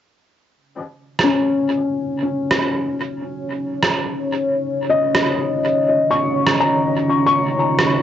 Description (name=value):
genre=ambient dub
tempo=91 BPM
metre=4/4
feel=straight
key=Eb minor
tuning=A4 = 440 Hz
part: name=deep dark ambient pad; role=sustained chords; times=1.7-8.0 s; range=Db4 to Db5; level=-21 LUFS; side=right 1 dB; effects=chorus, built-in reverb, cassette tape
part: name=felt-muted upright piano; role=arpeggios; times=1.2-8.0 s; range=Db4 to Db6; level=-19 LUFS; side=left 3 dB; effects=low-pass filter, cassette tape, analog delay, plate reverb
part: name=electronic rim click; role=drums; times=1.2-7.9 s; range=none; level=-20 LUFS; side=right 2 dB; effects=dub echo
room=wet booth ambience, RT60 0.2 s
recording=home recording on cassette, nothing above 7.8 kHz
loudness=-16 LUFS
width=side -10 dB against mid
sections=0.5-8.0 A section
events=filter sweep on ambient pad 0.5-8.0; filter sweep on felt piano 0.5-8.0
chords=0.5 Ebm7